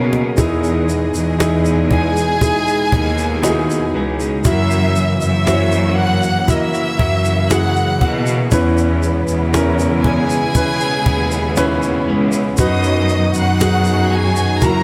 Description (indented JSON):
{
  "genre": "pop ballad",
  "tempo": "59 BPM",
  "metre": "4/4",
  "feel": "straight",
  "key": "unclear",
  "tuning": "A4 = 441 Hz",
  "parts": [
    { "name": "warm concert grand piano", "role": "accompaniment", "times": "0.0-14.8 s", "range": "E3 to C#5", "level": "-22 LUFS", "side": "equal", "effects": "none" },
    { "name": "muted studio string section", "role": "sustained chords", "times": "0.0-14.8 s", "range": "B2 to D#5", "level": "-27 LUFS", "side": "equal", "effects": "none" },
    { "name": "direct-recorded clean electric guitar", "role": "arpeggios", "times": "0.0-14.8 s", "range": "F#2 to A#4", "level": "-27 LUFS", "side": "equal", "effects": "none" },
    { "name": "bright studio cello section", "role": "bass", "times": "0.0-14.8 s", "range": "C#2 to B2", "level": "-20 LUFS", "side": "equal", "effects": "none" },
    { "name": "cajon", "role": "drums", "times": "0.1-14.8 s", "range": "none", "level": "-20 LUFS", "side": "equal", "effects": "none" },
    { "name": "tube shaker", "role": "percussion", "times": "0.4-14.8 s", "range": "none", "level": "-34 LUFS", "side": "equal", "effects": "none" },
    { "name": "warm studio violin section", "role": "melody", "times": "1.9-14.8 s", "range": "G#4 to F#6", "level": "-23 LUFS", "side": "equal", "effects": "none" }
  ],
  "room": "light reverb",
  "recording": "none",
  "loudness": "-16 LUFS",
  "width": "mono",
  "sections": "0.4-14.8 A section",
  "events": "drum fill 0.0-0.4",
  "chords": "0.4 Emaj7; 4.5 F#7; 8.5 C#m7/E; 12.6 B/F#"
}